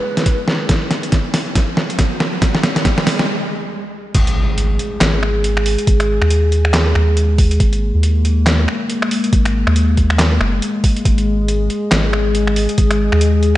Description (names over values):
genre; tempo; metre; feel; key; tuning
deep dubstep; 139 BPM; 4/4; swing 59% on 16ths, half-time; unclear; A4 = 440 Hz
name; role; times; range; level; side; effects
dark analog pad; sustained chords; 0.0-13.6 s; G#3 to G#4; -21 LUFS; left 2 dB; chorus
riser and impact; sound effects; 0.2-5.9 s; none; -26 LUFS; right 2 dB; none
trip hop sampler-style drum kit; drums; 0.2-13.6 s; crash cymbal, finger snaps, handclaps, hi-hat, snare drum; -18 LUFS; equal; overdrive
electronic kick drum; drums; 0.3-12.9 s; none; -15 LUFS; equal; none
soft dub sub bass; bass; 4.1-13.6 s; F#1 to D#2; -15 LUFS; equal; none
room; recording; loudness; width
moderate lush hall reverb, RT60 1.9 s, digital ambience; dreamy mix soaked in reverb, nothing above 10.7 kHz, faint mains hum; -13 LUFS; side -15 dB against mid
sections
0.0-4.1 A section; 4.1-13.6 B section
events
build-up 0.0-4.1; drum fill 0.0-3.3; riser 0.2-3.3; break 3.3-4.1; drop 4.1-13.6; impact 4.1-5.9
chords
0.0 N.C.; 4.1 G#5